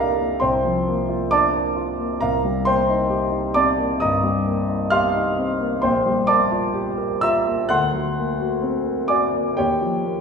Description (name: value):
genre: classical, impressionist solo piano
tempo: 66 BPM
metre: 4/4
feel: rubato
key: unclear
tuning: A4 = 442 Hz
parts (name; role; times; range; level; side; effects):
- warm grand piano; solo; 0.0-10.2 s; Bb1 to F#6; -18 LUFS; equal; none
room: wet recital hall reverb, RT60 1.4 s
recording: heard from further back in the room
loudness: -18 LUFS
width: side -5 dB against mid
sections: 0.0-10.2 A section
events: none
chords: 0.4 Bbadd9/C; 2.2 Cm7; 5.8 Bb69; 7.7 Daug7; 9.6 Eb9